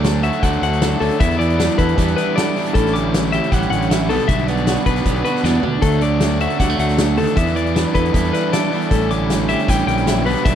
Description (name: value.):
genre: math rock and midwest emo.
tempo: 156 BPM.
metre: 4/4.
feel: straight.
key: D major.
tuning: A4 = 440 Hz.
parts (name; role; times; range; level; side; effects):
twelve-string electric guitar; accompaniment; 0.0-10.6 s; D2 to A4; -21 LUFS; right 9 dB; none.
clean electric guitar; arpeggios; 0.0-10.6 s; A4 to D6; -22 LUFS; left 8 dB; spring reverb.
overdriven electric guitar; riff; 0.0-10.6 s; A2 to E4; -23 LUFS; left 1 dB; none.
fuzz fingered electric bass; bass; 0.0-10.6 s; A1 to E2; -21 LUFS; equal; overdrive.
loose indie drum kit; drums; 0.0-10.5 s; hi-hat, kick drum, snare drum, toms; -21 LUFS; left 1 dB; none.
room: little or no reverb.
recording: none.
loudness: -15 LUFS.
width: side -9 dB against mid.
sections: 0.0-10.6 A section.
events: drum fill 5.4-5.8.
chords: 0.0 Dmaj9; 1.2 Em7; 2.7 A7sus4; 4.1 Gmaj7/B; 5.8 Dadd9; 7.4 Em7; 8.9 A7sus4.